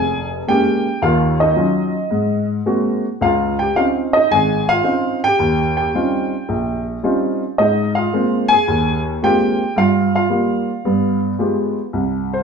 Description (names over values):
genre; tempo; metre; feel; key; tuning
solo jazz; 110 BPM; 4/4; swing 68% on 8ths; unclear; A4 = 444 Hz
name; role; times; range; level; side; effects
warm upright piano; solo; 0.0-12.4 s; F1 to Ab5; -15 LUFS; equal; none
room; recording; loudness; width
wet large studio reverb, RT60 0.9 s; band playing live in one room; -15 LUFS; side -6 dB against mid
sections
0.0-11.9 A section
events
none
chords
0.0 Bbm7; 1.0 Ebm9; 2.1 Ab9; 3.2 Dbmaj9; 5.4 Eb13; 7.6 Ab69; 9.8 Gm7; 10.8 G7b9